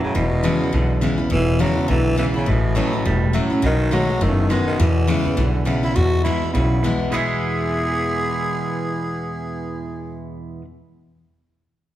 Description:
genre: rockabilly.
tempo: 206 BPM.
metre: 4/4.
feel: swing 59% on 8ths.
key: E major.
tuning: A4 = 440 Hz.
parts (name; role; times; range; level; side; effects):
growling tenor saxophone; melody; 0.0-10.2 s; B2 to G#4; -24 LUFS; equal; none.
picked steel-string acoustic guitar; accompaniment; 0.0-10.7 s; E2 to F#4; -24 LUFS; left 2 dB; none.
twangy electric guitar; riff; 0.0-10.6 s; E2 to G#4; -24 LUFS; right 2 dB; none.
upright bass; bass; 0.0-10.6 s; E1 to E2; -22 LUFS; equal; none.
room: wet large studio reverb, RT60 1.4 s.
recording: band playing live in one room.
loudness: -17 LUFS.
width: side -13 dB against mid.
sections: 0.0-6.0 A section; 6.0-7.1 B section; 7.1-9.5 C section.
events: none.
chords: 0.1 E; 2.5 A; 3.6 B7; 4.8 E.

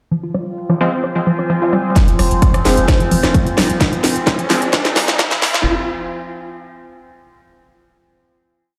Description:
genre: driving peak-time techno.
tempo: 130 BPM.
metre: 4/4.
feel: straight.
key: F minor.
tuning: A4 = 436 Hz.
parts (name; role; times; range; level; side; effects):
warbly dusty pluck; riff; 0.1-5.5 s; F3 to F4; -23 LUFS; equal; chorus, tube saturation, sidechain pumping, digital delay.
overtone-sweeping drone; drone; 0.5-5.7 s; F3 to C4; -27 LUFS; equal; chorus, built-in reverb, sidechain pumping.
shaker and snare drum; drums; 0.1-1.8 s; none; -32 LUFS; equal; high-pass filter on snare, low-pass filter on snare, sidechain pumping on perc, high-pass filter on perc, low-pass filter on perc, high-pass filter on room, low-pass filter on room.
warbly tape-like pad; texture; 0.1-5.7 s; F4 to Ab5; -26 LUFS; equal; chorus, built-in reverb, sidechain pumping.
techno drum kit; drums; 0.3-5.6 s; hi-hat, rim click, snare drum; -20 LUFS; equal; overdrive, low-pass filter on snare, sidechain pumping on hats, low-pass filter on hats.
supersaw stab; stabs; 0.8-4.6 s; F3 to C4; -23 LUFS; equal; sidechain pumping, low-pass filter, tape echo.
electronic kick drum; drums; 2.0-5.3 s; none; -17 LUFS; equal; overdrive.
riser; sound effects; 3.4-5.7 s; none; -26 LUFS; equal; none.
saturated sub bass; bass; 2.2-5.7 s; F1; -23 LUFS; equal; overdrive, sidechain pumping, low-pass filter.
room: moderate digital room reverb, RT60 1.2 s.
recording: played on a big sound system in a bare room, large studio reverb, high-pass filter.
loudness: -16 LUFS.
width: mono.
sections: 0.1-2.0 intro; 2.0-5.7 build.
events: build-up 2.0-5.7; drum fill 2.0-5.7; filter sweep on synth arpeggio sound 2.0-5.7; filter sweep on supersaw synth 2.0-5.7; filter sweep 2.0-5.7; riser 3.4-5.7.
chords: 0.1 Fm.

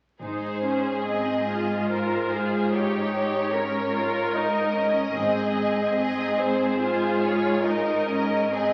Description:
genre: classical, slow romantic movement for string orchestra.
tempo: 73 BPM.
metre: 3/4.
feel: uneven beats, rubato.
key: Ab major.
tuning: A4 = 440 Hz.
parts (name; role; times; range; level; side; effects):
warm symphonic violin section; melody; 0.2-8.7 s; C5 to Eb5; -29 LUFS; equal; none.
rich symphonic violin section; second line; 0.2-8.7 s; G4 to Bb4; -31 LUFS; equal; none.
rich symphonic viola section; accompaniment; 0.2-8.7 s; C4 to F4; -30 LUFS; equal; none.
rich studio double bass section; bass; 0.2-1.0, 5.2-5.9 s; Ab1; -45 LUFS; equal; none.
rich symphonic cello section; bass; 0.2-8.7 s; Ab2; -32 LUFS; equal; none.
room: wet recital hall reverb, RT60 1.7 s.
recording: very old 78 rpm record, vinyl crackle.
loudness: -24 LUFS.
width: mono.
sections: 0.2-8.7 A section.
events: none.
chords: 0.2 Ab; 2.7 Eb7/Ab; 5.2 Ab.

